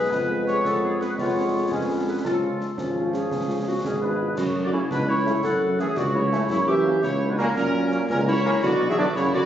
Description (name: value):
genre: military-style march for wind band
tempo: 113 BPM (dotted quarters)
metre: 6/8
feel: straight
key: unclear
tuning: A4 = 440 Hz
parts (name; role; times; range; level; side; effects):
- dark trumpet section; melody; 0.0-9.5 s; G#4 to F#5; -28 LUFS; equal; none
- mellow woodwind section; second line; 0.0-9.5 s; C#4 to B4; -25 LUFS; left 1 dB; none
- clear trombone section; sustained chords; 0.0-9.0 s; E#3 to D4; -30 LUFS; right 1 dB; none
- warm tuba; bass; 0.0-9.5 s; G#1 to F#2; -27 LUFS; right 1 dB; none
- concert snare drum, clash cymbals and concert bass drum; drums; 0.1-9.3 s; none; -35 LUFS; left 1 dB; none
- dark French horn section; accompaniment; 0.3-9.4 s; F#3 to G#4; -35 LUFS; left 4 dB; none
- dark euphonium; second line; 3.8-9.5 s; G#2 to F#3; -29 LUFS; right 2 dB; none
room: moderate recital hall reverb, RT60 1.5 s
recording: recorded on a phone in the room, studio reverb, compression, nothing above 7.6 kHz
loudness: -21 LUFS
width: side -10 dB against mid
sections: 0.0-4.4 A section; 4.4-9.5 B section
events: none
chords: 0.1 C#7/E#; 2.2 C#; 4.4 F#m; 6.5 F#7; 8.6 Bm